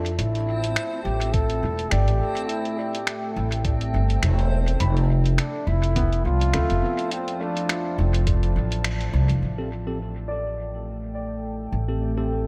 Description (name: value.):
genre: ambient dub.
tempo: 104 BPM.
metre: 4/4.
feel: swing 56% on 16ths.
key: A minor.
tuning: A4 = 440 Hz.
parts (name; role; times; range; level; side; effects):
deep dark ambient pad; sustained chords; 0.0-12.5 s; F3 to A5; -34 LUFS; equal; chorus, built-in reverb.
upright bass; bass; 0.0-12.5 s; E1 to F2; -25 LUFS; equal; none.
backwards swelling texture; texture; 0.0-9.4 s; C4; -40 LUFS; equal; built-in reverb.
lo-fi sampler-style drum kit; drums; 0.1-9.4 s; finger snaps, hi-hat; -33 LUFS; equal; dub echo.
warm trombone; melody; 0.2-8.3 s; C4 to A4; -32 LUFS; equal; tape echo.
electronic kick drum; drums; 1.3-8.4 s; none; -26 LUFS; equal; none.
felt-muted upright piano; arpeggios; 1.9-12.5 s; A3 to B5; -38 LUFS; equal; low-pass filter, tape echo.
bell-like tine electric piano; stabs; 9.6-12.5 s; C4 to A4; -36 LUFS; equal; low-pass filter, dub echo.
room: light reverb.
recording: none.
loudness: -24 LUFS.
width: mono.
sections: 0.0-9.4 A section; 9.4-12.5 B section.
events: band accent 8.8.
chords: 0.2 Am7; 4.8 F6; 9.4 Am7.